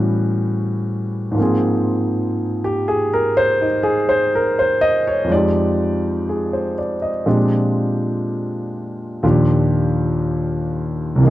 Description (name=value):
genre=jazz ballad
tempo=61 BPM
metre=4/4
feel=swing 67% on 8ths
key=Eb major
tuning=A4 = 440 Hz
part: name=warm grand piano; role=solo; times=0.0-11.3 s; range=C2 to Eb5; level=-16 LUFS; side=equal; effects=none
room=light reverb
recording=dark, warm production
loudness=-16 LUFS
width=side -14 dB against mid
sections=0.0-11.3 A section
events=none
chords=0.0 A13; 1.4 Ab69; 5.3 Fm9; 7.3 Bb13; 9.2 Ebmaj9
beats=0.39 | 1.37 2.35 3.33 4.31 | 5.29 6.28 7.26 8.25 | 9.23 10.22 11.21